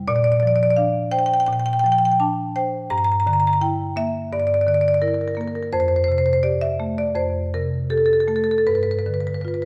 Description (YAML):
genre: classical, contemporary piece for solo marimba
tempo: 84 BPM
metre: 4/4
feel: rubato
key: unclear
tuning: A4 = 439 Hz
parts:
  - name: marimba with medium hard mallets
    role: solo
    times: 0.0-9.7 s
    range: F2 to Bb5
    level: -20 LUFS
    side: equal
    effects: none
room: wet recital hall reverb, RT60 1.5 s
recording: none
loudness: -20 LUFS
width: mono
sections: 0.0-9.7 A section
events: none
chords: 0.0 Bb69; 2.9 Gm6; 5.7 Fadd9; 8.7 G7